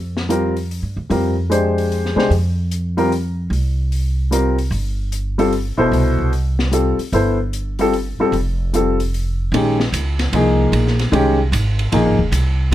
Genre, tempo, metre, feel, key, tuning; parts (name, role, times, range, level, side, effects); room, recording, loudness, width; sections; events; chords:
modal jazz; 150 BPM; 3/4; swing 65% on 8ths; Bb dorian from 9.5 s; A4 = 442 Hz
upright bass; bass; 0.0-12.7 s; F1 to C3; -19 LUFS; right 1 dB
open jazz drum kit; drums; 0.2-12.7 s; hi-hat, kick drum, ride cymbal, snare drum; -27 LUFS; left 1 dB
warm upright piano; accompaniment; 0.3-12.7 s; B2 to C5; -17 LUFS; left 1 dB
little or no reverb; -16 LUFS; side -13 dB against mid
0.0-9.5 A section; 9.5-12.7 B section
0.0 Fsus4; 4.7 G9sus4; 8.3 F; 9.5 Bbm9